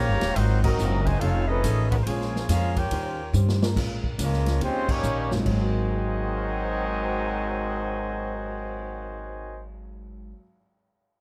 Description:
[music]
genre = jazz, big band swing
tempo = 141 BPM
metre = 4/4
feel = swing 65% on 8ths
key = Ab mixolydian from 3.8 s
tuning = A4 = 440 Hz
[part]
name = clear trumpet section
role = melody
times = 0.0-9.6 s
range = Ab3 to Bb5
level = -33 LUFS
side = equal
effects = none
[part]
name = bright trombone section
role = second line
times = 0.0-9.6 s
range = Ab2 to G4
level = -35 LUFS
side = equal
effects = none
[part]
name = vintage hollow-body jazz guitar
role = accompaniment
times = 0.0-10.4 s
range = Ab2 to C5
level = -38 LUFS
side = equal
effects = none
[part]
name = upright bass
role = bass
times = 0.0-10.3 s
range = Eb1 to G2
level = -29 LUFS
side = equal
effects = none
[part]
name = swinging big-band drum kit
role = drums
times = 0.2-8.8 s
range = crash cymbal, cymbal swell, hi-hat, kick drum, ride cymbal, snare drum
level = -32 LUFS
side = equal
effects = none
[part]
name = mellow trombone section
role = sustained chords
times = 0.6-4.2 s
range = F3 to C5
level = -36 LUFS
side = equal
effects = none
[part]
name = warm grand piano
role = accompaniment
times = 5.3-10.6 s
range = Ab2 to Ab6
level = -35 LUFS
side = equal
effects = none
[sound]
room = little or no reverb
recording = close, detailed microphones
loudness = -25 LUFS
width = mono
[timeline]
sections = 0.0-3.8 A section; 3.8-5.5 B section; 5.5-8.9 C section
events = band accent 0.6, 4.8; drum fill 3.3-3.8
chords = 0.4 Ab13; 1.2 F7alt; 2.1 Bbm7; 2.9 Eb13; 3.8 Bbm7; 4.6 Eb7; 5.5 Ab13

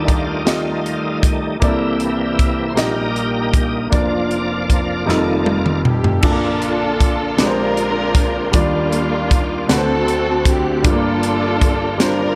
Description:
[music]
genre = slow gospel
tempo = 52 BPM (dotted quarters)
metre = 6/8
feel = straight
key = Bb major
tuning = A4 = 441 Hz
[part]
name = clear grand piano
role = accompaniment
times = 0.0-12.4 s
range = F1 to Eb5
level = -22 LUFS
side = equal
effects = none
[part]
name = bright tonewheel organ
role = sustained chords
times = 0.0-12.4 s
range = F2 to F#5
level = -25 LUFS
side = equal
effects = slow rotary speaker, overdrive, chorus vibrato
[part]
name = crisp fusion drum kit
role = drums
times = 0.1-12.2 s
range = crash cymbal, hi-hat, kick drum, snare drum, toms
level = -20 LUFS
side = equal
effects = none
[part]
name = muted studio string section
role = melody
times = 5.9-12.4 s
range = Bb3 to Bb4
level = -22 LUFS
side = equal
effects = none
[sound]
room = light reverb, studio ambience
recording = none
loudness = -17 LUFS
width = mono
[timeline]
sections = 0.0-6.2 A section; 6.2-12.4 B section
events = tonewheel organ solo 0.0-6.2; drum fill 5.1-6.2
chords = 0.0 Ebmaj9#11; 1.6 C13; 2.8 Eb/Bb; 3.9 Bb/F; 5.1 F9; 6.2 Bbmaj7; 7.4 Bb13; 8.5 Ebmaj9; 9.7 D7; 10.8 Gm7

